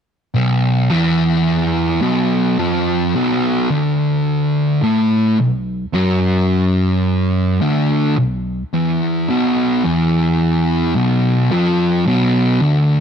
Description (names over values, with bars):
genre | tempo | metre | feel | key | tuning
metal | 54 BPM | 4/4 | straight | B minor | A4 = 440 Hz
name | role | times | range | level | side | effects
fuzz guitar | riff | 0.3-13.0 s | B1 to A3 | -14 LUFS | equal | distortion
room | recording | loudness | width
digital ambience | dry, close 1970s-style studio recording | -14 LUFS | side -7 dB against mid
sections
0.4-13.0 A section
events
none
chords
0.4 Bm